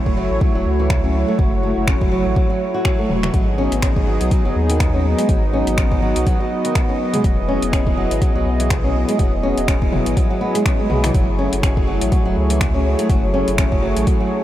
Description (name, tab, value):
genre	afro house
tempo	123 BPM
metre	4/4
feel	swing 57% on 16ths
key	F# dorian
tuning	A4 = 440 Hz
part	warm analog pad	sustained chords	0.0-14.4 s	F#3 to D#5	-21 LUFS	equal	chorus, sidechain pumping
part	warm sub bass	bass	0.0-14.1 s	E1 to D#2	-22 LUFS	equal	sidechain pumping
part	electronic kick drum	drums	0.1-14.2 s	none	-18 LUFS	equal	none
part	flamenco guitar	arpeggios	0.2-14.3 s	D#3 to F#4	-23 LUFS	equal	sidechain pumping, diffuse ambient delay
part	deep house drum kit	drums	0.9-14.2 s	finger snaps, hi-hat, toms	-28 LUFS	left 1 dB	overdrive
room	light reverb, digital ambience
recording	none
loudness	-15 LUFS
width	side -13 dB against mid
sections	0.0-14.4 A section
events	none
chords	0.0 F#m7; 3.3 G#m7; 7.2 Emaj9; 11.1 F#m9